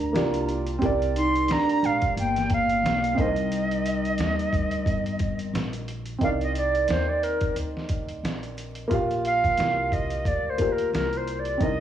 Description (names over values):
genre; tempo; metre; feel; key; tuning
hip hop, jazz-hop; 89 BPM; 4/4; swing 57% on 16ths; C minor; A4 = 440 Hz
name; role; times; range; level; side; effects
silver concert flute; melody; 0.0-11.8 s; Bb4 to C6; -26 LUFS; right 1 dB; none
vibraphone with medium hard mallets; second line; 0.0-5.5 s; G3 to Eb4; -28 LUFS; left 2 dB; cassette tape
warm upright piano; accompaniment; 0.0-11.8 s; Bb3 to F5; -29 LUFS; right 2 dB; cassette tape
upright bass; bass; 0.0-11.8 s; G1 to Eb2; -31 LUFS; equal; none
trip hop sampler-style drum kit; drums; 0.2-11.8 s; hi-hat, kick drum, snare drum; -30 LUFS; equal; cassette tape
room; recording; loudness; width
moderate spring reverb, RT60 2.0 s; home recording on cassette, vinyl crackle, studio reverb; -22 LUFS; side -10 dB against mid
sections
0.0-6.2 A section; 6.2-11.8 B section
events
flute solo 6.2-11.8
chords
0.0 Gm7; 0.8 Csus2; 3.2 Cm7; 6.2 Cm9; 8.9 Gm7/Bb